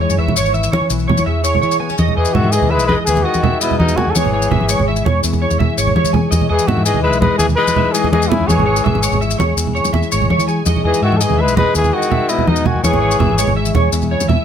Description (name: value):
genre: highlife guitar band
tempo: 111 BPM (dotted quarters)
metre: 12/8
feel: straight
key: E major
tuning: A4 = 439 Hz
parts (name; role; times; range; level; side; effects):
- fingerpicked plugged-in steel-string acoustic guitar; accompaniment; 0.0-14.4 s; E3 to B4; -22 LUFS; left 5 dB; none
- electric guitar at the edge of break-up; arpeggios; 0.0-14.4 s; C#5 to G#5; -20 LUFS; right 3 dB; analog chorus, tape echo
- fingered electric bass; bass; 0.0-14.4 s; G#1 to E3; -18 LUFS; equal; none
- congas; percussion; 0.0-14.4 s; none; -18 LUFS; right 3 dB; none
- maracas; percussion; 0.1-14.3 s; none; -24 LUFS; left 7 dB; none
- breathy trumpet; melody; 2.2-13.5 s; D#4 to B4; -18 LUFS; left 1 dB; none
- growling tenor saxophone; second line; 2.2-13.5 s; B2 to G#3; -22 LUFS; left 6 dB; none
room: moderate studio reverb, RT60 0.9 s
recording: none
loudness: -12 LUFS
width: side -8 dB against mid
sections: 0.0-2.0 A section; 2.0-14.4 B section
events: none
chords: 0.0 C#m; 2.0 Emaj7; 4.2 C#m; 6.3 Emaj7; 8.5 C#m; 10.7 Emaj7; 12.8 C#m